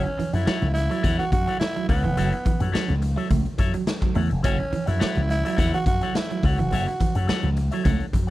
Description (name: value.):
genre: funk.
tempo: 106 BPM.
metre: 4/4.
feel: straight.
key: F# minor.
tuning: A4 = 440 Hz.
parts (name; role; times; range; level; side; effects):
growling tenor saxophone; melody; 0.0-7.3 s; B3 to F#4; -28 LUFS; right 2 dB; none.
electric guitar with an envelope filter; accompaniment; 0.0-8.3 s; E4 to F#5; -31 LUFS; left 7 dB; none.
electric guitar at the edge of break-up; riff; 0.0-8.2 s; E3 to A3; -30 LUFS; right 6 dB; spring reverb.
slap bass with an envelope filter; bass; 0.0-8.3 s; E#1 to F#2; -24 LUFS; equal; none.
congas; percussion; 0.1-8.3 s; none; -32 LUFS; right 4 dB; none.
raw garage drum kit; drums; 0.2-8.3 s; hi-hat, kick drum, snare drum; -26 LUFS; left 1 dB; none.
room: small room ambience.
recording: none.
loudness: -20 LUFS.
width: side -16 dB against mid.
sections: 0.0-8.3 A section.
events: none.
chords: 0.0 F#m7.